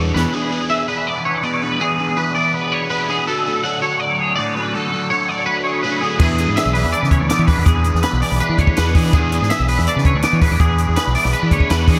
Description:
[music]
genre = math rock and midwest emo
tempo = 164 BPM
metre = 4/4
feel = straight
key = unclear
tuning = A4 = 438 Hz
[part]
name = twangy electric guitar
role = accompaniment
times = 0.0-12.0 s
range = E2 to B4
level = -28 LUFS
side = equal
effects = subtle chorus, analog delay
[part]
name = twangy electric guitar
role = arpeggios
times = 0.0-12.0 s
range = G#4 to F#5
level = -22 LUFS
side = equal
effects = ensemble chorus, analog delay
[part]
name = overdriven electric guitar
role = riff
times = 0.0-12.0 s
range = D3 to G#4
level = -26 LUFS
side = equal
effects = phaser
[part]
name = growling fingered electric bass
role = bass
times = 0.0-0.2, 6.2-12.0 s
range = B1 to E3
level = -20 LUFS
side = equal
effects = overdrive
[part]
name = compact cocktail drum kit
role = drums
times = 0.2, 6.2-12.0 s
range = crash cymbal, hi-hat, kick drum, snare drum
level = -21 LUFS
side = equal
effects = none
[sound]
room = light reverb, studio reverb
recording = echo-heavy mix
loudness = -17 LUFS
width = mono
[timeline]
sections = 0.3-12.0 A section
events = drum fill 0.0-0.3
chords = 0.3 E7; 3.3 Dmaj7; 6.2 E7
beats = | 0.33 0.70 1.07 1.44 | 1.81 2.17 2.54 2.91 | 3.27 3.64 4.01 4.38 | 4.74 5.11 5.47 5.84 | 6.21 6.57 6.94 7.30 | 7.67 8.04 8.40 8.77 | 9.13 9.50 9.87 10.23 | 10.60 10.96 11.33 11.70

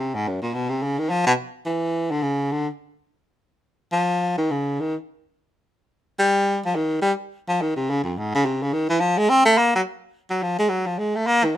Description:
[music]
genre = jazz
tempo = 212 BPM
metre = 4/4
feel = swing 61% on 8ths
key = unclear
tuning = A4 = 445 Hz
[part]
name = mellow baritone saxophone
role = solo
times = 0.0-11.6 s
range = F2 to C4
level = -19 LUFS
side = equal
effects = none
[sound]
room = light reverb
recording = minimal, uncompressed stereo recording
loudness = -20 LUFS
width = side -12 dB against mid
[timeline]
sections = 0.0-9.6 A section; 9.6-11.6 A section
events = baritone saxophone solo 0.0-11.6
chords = none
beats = 0.23 | 0.51 0.80 1.08 1.36 | 1.65 1.93 2.21 2.50 | 2.78 3.06 3.35 3.63 | 3.91 4.19 4.48 4.76 | 5.04 5.33 5.61 5.89 | 6.17 6.46 6.74 7.02 | 7.30 7.59 7.87 8.15 | 8.43 8.72 9.00 9.28 | 9.56 9.85 10.13 10.41 | 10.69 10.98 11.26 11.54

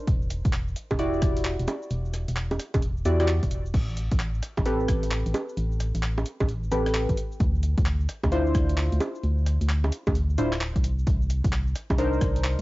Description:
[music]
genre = UK garage, two-step garage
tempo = 131 BPM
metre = 4/4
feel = swing 64% on 16ths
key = A minor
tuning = A4 = 439 Hz
[part]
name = deep mellow chord stab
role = stabs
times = 0.0-12.6 s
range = C4 to D5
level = -28 LUFS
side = equal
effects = chorus, cassette tape, tape echo
[part]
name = organ-like FM bass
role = bass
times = 0.1-12.6 s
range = D1 to E2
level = -26 LUFS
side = equal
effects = none
[part]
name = breakbeat sampler-style drum kit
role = drums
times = 0.1-12.6 s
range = bongos, cabasa, crash cymbal, handclaps, hi-hat, rim click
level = -32 LUFS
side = right 1 dB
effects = cassette tape
[part]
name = electronic kick drum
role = drums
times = 0.1-12.3 s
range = none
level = -26 LUFS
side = equal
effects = cassette tape
[sound]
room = light reverb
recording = home recording on cassette, nothing above 7.6 kHz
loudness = -23 LUFS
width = side -19 dB against mid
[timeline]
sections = 0.0-12.6 A section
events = none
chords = 0.1 Em9; 3.7 Am9; 7.2 Dm9; 10.8 Cm9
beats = | 0.07 0.53 0.99 1.45 | 1.91 2.37 2.82 3.28 | 3.74 4.20 4.66 5.11 | 5.57 6.03 6.49 6.95 | 7.40 7.86 8.32 8.78 | 9.23 9.69 10.15 10.61 | 11.07 11.53 11.98 12.44

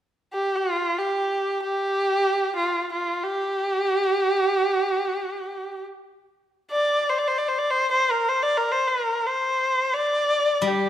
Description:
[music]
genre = chinese traditional, Chinese chamber ensemble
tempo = free time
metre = none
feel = none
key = G yu mode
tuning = A4 = 440 Hz
[part]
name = rich erhu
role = melody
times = 0.3-10.9 s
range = F4 to D5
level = -21 LUFS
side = equal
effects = none
[part]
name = steel-string zither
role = accompaniment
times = 10.6-10.9 s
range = G3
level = -23 LUFS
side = left 2 dB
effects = none
[sound]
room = wet recital hall reverb, RT60 1.5 s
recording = none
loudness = -21 LUFS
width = side -11 dB against mid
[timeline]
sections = 0.0-10.9 A section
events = none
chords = none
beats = free time

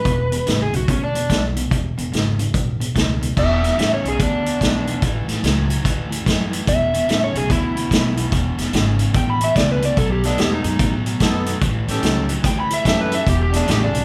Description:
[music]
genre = electric blues shuffle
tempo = 145 BPM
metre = 4/4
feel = swing 64% on 8ths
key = E mixolydian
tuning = A4 = 439 Hz
[part]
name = overdriven slide guitar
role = melody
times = 0.0-14.0 s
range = C#4 to B5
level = -24 LUFS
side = equal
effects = none
[part]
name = crunchy overdriven guitar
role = riff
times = 0.0-14.0 s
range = E2 to G#3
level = -27 LUFS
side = equal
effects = spring reverb
[part]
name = upright bass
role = bass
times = 0.1-14.0 s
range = E1 to A2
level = -25 LUFS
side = equal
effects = none
[part]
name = vintage drum kit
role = drums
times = 0.1-14.0 s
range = crash cymbal, hi-hat, kick drum, snare drum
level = -23 LUFS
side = equal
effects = none
[part]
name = warm horn section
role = stabs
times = 10.2-14.0 s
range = B3 to A4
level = -29 LUFS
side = equal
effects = none
[sound]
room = moderate large studio reverb, RT60 0.9 s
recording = band playing live in one room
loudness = -19 LUFS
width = mono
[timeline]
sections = 0.0-3.4 A section; 3.4-14.0 B section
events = electric slide guitar solo 3.4-14.0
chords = 0.1 E5; 5.0 A; 6.7 E5; 10.0 B7; 11.6 A7; 13.3 E7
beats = | 0.05 0.47 0.88 1.29 | 1.71 2.12 2.54 2.95 | 3.36 3.78 4.19 4.61 | 5.02 5.43 5.85 6.26 | 6.67 7.08 7.50 7.91 | 8.32 8.74 9.15 9.56 | 9.97 10.38 10.80 11.21 | 11.62 12.03 12.44 12.85 | 13.27 13.68

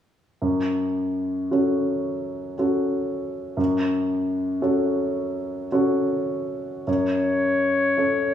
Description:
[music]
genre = classical, romantic duo for clarinet and grand piano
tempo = 50-60 BPM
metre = 3/4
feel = rubato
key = F# minor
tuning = A4 = 440 Hz
[part]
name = warm grand piano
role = accompaniment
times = 0.4-8.3 s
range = F#2 to A4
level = -22 LUFS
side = equal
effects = none
[part]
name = mellow clarinet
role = melody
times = 6.9-8.3 s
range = C#5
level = -21 LUFS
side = left 3 dB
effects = none
[sound]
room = wet recital hall reverb, RT60 1.2 s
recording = small room ambience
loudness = -21 LUFS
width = side -10 dB against mid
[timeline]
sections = 0.4-6.9 A section; 6.9-8.3 B section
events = none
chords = 0.4 F#m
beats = | 0.41 1.51 2.58 | 3.58 4.62 5.71 | 6.87 7.97

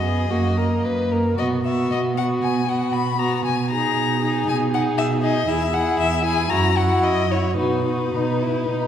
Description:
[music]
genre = quick classical-period movement for string quartet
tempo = 116 BPM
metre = 4/4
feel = uneven beats, rubato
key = B major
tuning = A4 = 441 Hz
[part]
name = rich violin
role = melody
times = 0.0-8.9 s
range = B4 to B5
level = -24 LUFS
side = left 5 dB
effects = none
[part]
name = dark violin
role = second line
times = 0.0-8.9 s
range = D#4 to B4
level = -25 LUFS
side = left 1 dB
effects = none
[part]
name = warm viola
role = accompaniment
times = 0.0-8.9 s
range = A#3 to E4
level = -25 LUFS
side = right 1 dB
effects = none
[part]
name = dark cello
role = bass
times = 0.0-8.9 s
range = E2 to B2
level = -24 LUFS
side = right 3 dB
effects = none
[sound]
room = wet concert hall reverb, RT60 1.9 s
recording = recorded in a church or concert hall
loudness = -18 LUFS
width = side -9 dB against mid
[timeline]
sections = 0.0-8.9 A section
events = none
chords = 0.3 F#; 1.4 B5; 3.5 G#m/B; 5.5 E; 6.5 F#7; 7.6 B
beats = 0.30 0.84 | 1.38 1.91 2.43 2.94 | 3.45 3.97 4.48 4.98 | 5.48 5.99 6.51 7.04 | 7.58 8.14 8.69

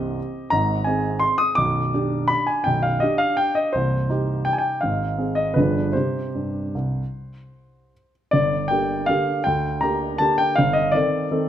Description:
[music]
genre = classical, piano waltz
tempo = 145-179 BPM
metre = 3/4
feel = rubato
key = C minor, G minor from 8.3 s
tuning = A4 = 441 Hz
[part]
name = warm grand piano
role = solo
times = 0.0-11.5 s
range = B0 to Eb6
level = -19 LUFS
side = equal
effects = none
[sound]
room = moderate recital hall reverb, RT60 1.4 s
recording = close, detailed microphones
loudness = -19 LUFS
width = side -10 dB against mid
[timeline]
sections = 0.0-8.3 A section; 8.3-11.5 B section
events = none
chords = 0.0 Cm; 0.5 Abadd9; 1.6 G/B; 3.7 Cm; 4.8 Ab; 5.6 G7b9; 5.9 C5; 8.3 Gm; 10.6 Am7b5/G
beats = 0.17 | 0.52 0.86 1.22 | 1.58 1.94 2.30 | 2.66 3.02 3.38 | 3.74 4.10 4.47 | 4.83 5.18 5.56 | 5.95 6.34 6.74 | 7.13 7.52 7.92 | 8.32 8.70 9.09 | 9.46 9.82 10.20 | 10.57 10.94 11.31

